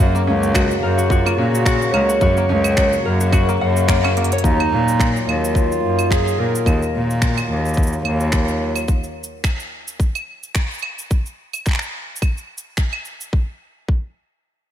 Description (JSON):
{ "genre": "folktronica", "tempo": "108 BPM", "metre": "4/4", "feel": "swing 56% on 16ths", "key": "unclear", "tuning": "A4 = 440 Hz", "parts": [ { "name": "pedal harmonium", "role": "sustained chords", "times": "0.0-8.8 s", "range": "Db3 to Gb4", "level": "-22 LUFS", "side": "left 1 dB", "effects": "none" }, { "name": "open-back banjo", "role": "arpeggios", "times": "0.0-4.4 s", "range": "Bb3 to Gb5", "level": "-25 LUFS", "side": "equal", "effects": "ping-pong delay" }, { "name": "clear cello", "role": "bass", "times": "0.0-8.7 s", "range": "Db2 to Bb2", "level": "-19 LUFS", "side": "equal", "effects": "none" }, { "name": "organic electronic drum kit", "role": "drums", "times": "0.0-13.3 s", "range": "claves, finger snaps, hi-hat, shaker", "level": "-26 LUFS", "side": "right 2 dB", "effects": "overdrive" }, { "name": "warm clarinet", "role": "melody", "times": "0.5-6.7 s", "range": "Eb4 to Db5", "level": "-23 LUFS", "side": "right 1 dB", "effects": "ping-pong delay" }, { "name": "electronic kick drum", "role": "drums", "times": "0.5-14.1 s", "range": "none", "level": "-18 LUFS", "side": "equal", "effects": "overdrive" } ], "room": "moderate lush hall reverb, RT60 2.5 s", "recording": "dreamy mix soaked in reverb", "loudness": "-16 LUFS", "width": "side -10 dB against mid", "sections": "0.0-4.4 A section; 4.4-13.3 B section; 13.3-14.7 C section", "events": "drum fill 4.2", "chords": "0.0 Gb; 4.4 Ebmadd9; 8.9 N.C." }